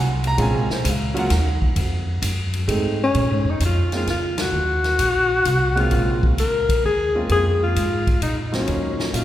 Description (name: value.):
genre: jazz, small-group swing and bop.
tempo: 130 BPM.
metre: 3/4.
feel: swing 68% on 8ths.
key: Bb minor.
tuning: A4 = 439 Hz.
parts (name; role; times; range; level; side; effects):
warm grand piano; accompaniment; 0.0-9.2 s; Gb3 to Bb5; -26 LUFS; right 2 dB; none.
upright bass; bass; 0.0-9.2 s; Bb1 to Bb2; -22 LUFS; equal; none.
swinging big-band drum kit; drums; 0.2-9.2 s; hi-hat, kick drum, ride cymbal, snare drum; -26 LUFS; equal; none.
warm alto saxophone; melody; 3.0-9.2 s; Db4 to Bb4; -21 LUFS; left 2 dB; none.
room: wet church reverb, RT60 2.5 s.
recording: recorded in a church or concert hall.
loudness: -18 LUFS.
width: side -12 dB against mid.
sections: 0.0-3.1 A section; 3.1-9.2 B section.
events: band accent 4.3.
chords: 0.4 Bbm7; 1.3 Ebm; 1.8 F7#9; 3.1 Bbm7; 4.5 Ebm; 5.9 Bbm7; 8.7 Ebm7.